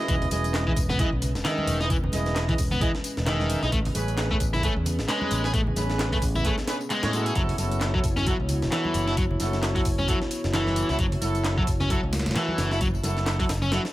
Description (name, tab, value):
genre	breakbeat, breaks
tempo	132 BPM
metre	4/4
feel	swing 58% on 16ths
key	F# dorian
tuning	A4 = 440 Hz
part	dark analog pad	sustained chords	0.0-13.9 s	G#3 to C#5	-33 LUFS	left 1 dB	chorus, sidechain pumping
part	clear horn section	stabs	0.0-13.8 s	C#4 to E5	-32 LUFS	right 3 dB	vintage 12-bit sampler grit, dub echo
part	overdriven electric guitar	riff	0.1-13.8 s	D#3 to G#4	-29 LUFS	left 1 dB	tube saturation, vintage 12-bit sampler grit, dub echo
part	modern bright picked electric bass	bass	0.1-13.8 s	E1 to A2	-28 LUFS	equal	none
part	breakbeat sampler-style drum kit	drums	0.1-13.9 s	hi-hat, kick drum, snare drum	-28 LUFS	equal	none
part	garage drum kit	drums	0.1-13.9 s	handclaps, hi-hat, tambourine	-36 LUFS	left 2 dB	none
part	congas	percussion	0.2-13.7 s	none	-36 LUFS	right 1 dB	none
room	light reverb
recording	none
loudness	-22 LUFS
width	side -16 dB against mid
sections	0.0-13.9 A section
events	none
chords	0.1 Emaj7; 3.7 Amaj9; 7.4 F#m7